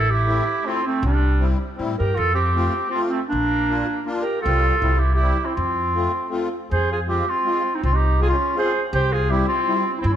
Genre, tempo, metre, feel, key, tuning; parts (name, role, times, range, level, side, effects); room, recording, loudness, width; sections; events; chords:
alpine folk, alpine dance band; 160 BPM; 3/4; straight; F major, F minor from 6.7 s; A4 = 440 Hz
clear clarinet; melody; 0.0-10.2 s; C4 to C5; -22 LUFS; equal
mellow trumpet; second line; 0.0-10.2 s; G3 to Ab4; -28 LUFS; right 5 dB; tape echo
upright bass; bass; 0.0-10.2 s; A1 to A2; -21 LUFS; equal
musette accordion; accompaniment; 0.3-9.8 s; G3 to F4; -27 LUFS; left 3 dB
moderate recital hall reverb, RT60 1.5 s; -18 LUFS; side -10 dB against mid
0.0-6.7 A section; 6.7-10.2 B section
0.0 Am; 1.0 C; 2.2 F; 3.3 Bb; 4.4 Csus4; 4.8 C; 5.6 F; 6.7 Fm; 8.9 C